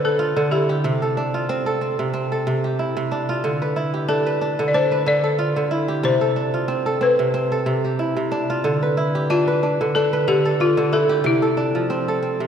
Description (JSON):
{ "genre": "west african traditional", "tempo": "92 BPM", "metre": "4/4", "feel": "swing 55% on 16ths", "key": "D dorian", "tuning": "A4 = 439 Hz", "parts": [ { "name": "balafon", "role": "melody", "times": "0.0-12.5 s", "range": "E4 to D5", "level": "-21 LUFS", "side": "left 2 dB", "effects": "none" }, { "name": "kora", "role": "arpeggios", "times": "0.0-12.5 s", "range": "C3 to B4", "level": "-20 LUFS", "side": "right 1 dB", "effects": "none" } ], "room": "wet church reverb, RT60 2.6 s", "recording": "recorded in a church or concert hall", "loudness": "-18 LUFS", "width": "side -8 dB against mid", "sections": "0.0-12.5 A section", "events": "none", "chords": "0.0 Dm; 0.8 C; 3.4 Dm; 6.0 C; 8.6 Dm; 11.2 C", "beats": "0.19 | 0.84 1.49 2.14 2.79 | 3.44 4.09 4.74 5.39 | 6.04 6.69 7.34 7.99 | 8.64 9.29 9.95 10.60 | 11.25 11.90" }